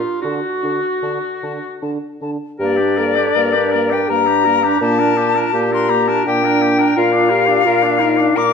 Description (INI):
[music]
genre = classical, slow romantic movement for wind quintet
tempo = 74-87 BPM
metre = 3/4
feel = rubato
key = G minor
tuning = A4 = 440 Hz
[part]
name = clear oboe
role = second line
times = 0.0-8.5 s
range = F4 to D5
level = -23 LUFS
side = left 4 dB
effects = none
[part]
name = mellow clarinet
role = accompaniment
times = 0.0-8.5 s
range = Bb3 to F#4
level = -23 LUFS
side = right 4 dB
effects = none
[part]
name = mellow French horn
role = accompaniment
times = 0.2-8.5 s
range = D4 to Bb4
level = -20 LUFS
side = left 1 dB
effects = none
[part]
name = dark bassoon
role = bass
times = 0.2-8.5 s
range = G2 to D3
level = -21 LUFS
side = right 2 dB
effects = none
[part]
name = silver concert flute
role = melody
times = 0.3-8.5 s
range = D5 to D6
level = -17 LUFS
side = left 7 dB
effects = none
[sound]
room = wet recital hall reverb, RT60 1.4 s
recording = none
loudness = -13 LUFS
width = side -6 dB against mid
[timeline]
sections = 0.0-2.6 A section; 2.6-8.5 B section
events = none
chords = 0.2 D; 2.6 Gm; 4.8 Gm/Bb; 7.0 Bb